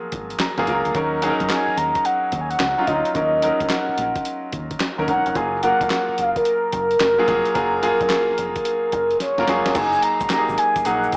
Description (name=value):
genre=R&B, new jack swing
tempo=109 BPM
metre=4/4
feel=swing 65% on 16ths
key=unclear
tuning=A4 = 441 Hz
part: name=clear grand piano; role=accompaniment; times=0.0-11.2 s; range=F3 to Bb5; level=-25 LUFS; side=equal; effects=none
part: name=deep dub fingered electric bass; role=bass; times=0.1-11.1 s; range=Fb1 to Gb2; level=-35 LUFS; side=equal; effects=tube saturation
part: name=dusty soul sampler-style drum kit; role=drums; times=0.1-11.2 s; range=crash cymbal, handclaps, hi-hat, kick drum, snare drum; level=-29 LUFS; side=equal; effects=vintage 12-bit sampler grit, gated reverb
part: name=mellow horn-like synth lead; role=melody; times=1.5-11.2 s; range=Bb4 to Bb5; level=-22 LUFS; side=equal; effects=chorus
part: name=egg shaker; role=percussion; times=9.7-11.2 s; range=none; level=-52 LUFS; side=equal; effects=none
room=light reverb, digital ambience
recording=small speaker sound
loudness=-21 LUFS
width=mono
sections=0.0-9.8 A section; 9.8-11.2 B section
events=grand piano fill 0.1-0.9; drum fill 9.2-9.8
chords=0.0 Gbmaj9; 0.9 Ebm7; 5.4 Gbmaj9; 9.8 Gb69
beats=0.40 | 0.95 1.50 2.05 2.60 | 3.15 3.70 4.25 4.80 | 5.35 5.90 6.45 7.00 | 7.55 8.10 8.65 9.21 | 9.76 10.31 10.86